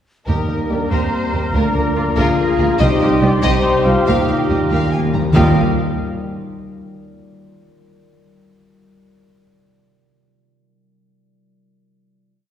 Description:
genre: cinematic, heroic adventure film score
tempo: 95 BPM (dotted quarters)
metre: 6/8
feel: straight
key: Eb major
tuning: A4 = 436 Hz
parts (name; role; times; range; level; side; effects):
- warm symphonic violin section; melody; 0.3-5.6 s; F4 to Bb5; -27 LUFS; left 3 dB; none
- clear clarinet; second line; 0.3-5.5 s; F4 to G4; -27 LUFS; left 3 dB; none
- mellow hollow concert flute; second line; 0.3-5.6 s; G5 to Bb5; -27 LUFS; equal; none
- warm oboe; second line; 0.3-5.5 s; Bb4 to C5; -28 LUFS; equal; none
- warm symphonic violin section; second line; 0.3-5.6 s; F4 to C5; -30 LUFS; left 3 dB; none
- warm symphonic viola section; accompaniment; 0.3-5.6 s; Eb4 to C5; -26 LUFS; right 1 dB; none
- clear trombone section; sustained chords; 0.3-5.5 s; F3 to F4; -27 LUFS; equal; none
- mellow French horn section; sustained chords; 0.3-5.5 s; Bb3 to F4; -23 LUFS; left 2 dB; none
- concert harp; arpeggios; 0.3-6.6 s; C3 to F5; -25 LUFS; left 2 dB; none
- mellow trumpet section; stabs; 0.3-5.5 s; Bb4 to F5; -25 LUFS; left 1 dB; none
- dark studio double bass section; bass; 0.3-5.6 s; C2 to Eb2; -21 LUFS; right 1 dB; none
- warm symphonic cello section; bass; 0.3-5.6 s; C2 to Eb2; -21 LUFS; right 2 dB; none
- timpani; percussion; 4.1-5.5 s; Eb3; -22 LUFS; equal; none
room: wet concert hall reverb, RT60 2.0 s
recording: heard from further back in the room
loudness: -14 LUFS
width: side -10 dB against mid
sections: 0.3-5.3 theme; 5.3-6.6 final chord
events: timpani fill 4.1-5.3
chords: 0.3 Eb; 1.5 Bb/D; 2.8 Cm; 4.1 Ebadd9

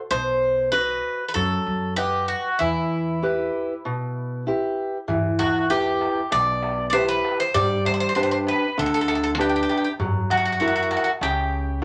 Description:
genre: greek folk, Greek bouzouki band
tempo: 97 BPM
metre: 4/4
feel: straight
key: E harmonic minor, E minor from 5.1 s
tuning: A4 = 440 Hz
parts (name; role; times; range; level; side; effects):
- Greek bouzouki; melody; 0.1-11.8 s; E4 to D5; -25 LUFS; equal; none
- fingerpicked steel-string acoustic guitar; accompaniment; 0.1-11.8 s; B2 to F#5; -27 LUFS; equal; none
- upright bass; bass; 0.1-11.8 s; B1 to G2; -34 LUFS; equal; none
- darbuka; percussion; 5.1-11.8 s; none; -33 LUFS; equal; none
room: wet club reverb, RT60 0.6 s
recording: none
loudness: -23 LUFS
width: mono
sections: 0.0-5.1 A section; 5.1-11.8 B section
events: speeding up 0.0-11.8; break 3.8-5.1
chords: 0.1 B; 2.6 Em; 7.5 G; 10.0 F#7

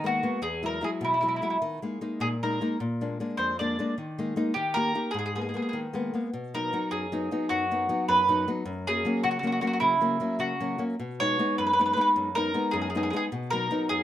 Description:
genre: italian folk, Italian serenade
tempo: 103 BPM (dotted quarters)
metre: 6/8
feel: rubato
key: G# minor, B major from 6.3 s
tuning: A4 = 440 Hz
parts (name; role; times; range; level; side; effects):
- mandolin; melody; 0.0-14.0 s; E4 to D5; -26 LUFS; right 1 dB; plate reverb
- nylon-string guitar; accompaniment; 0.0-14.0 s; E2 to G4; -29 LUFS; left 2 dB; none
room: moderate small room reverb, RT60 0.5 s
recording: close, detailed microphones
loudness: -25 LUFS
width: side -12 dB against mid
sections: 0.0-6.3 A section; 6.3-14.0 B section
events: none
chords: 0.4 Eadd9; 1.6 D#sus4; 2.8 A#7; 4.0 D#sus4; 4.6 D#; 5.1 G#madd9; 6.3 B; 8.7 F#; 11.0 B6; 13.3 B

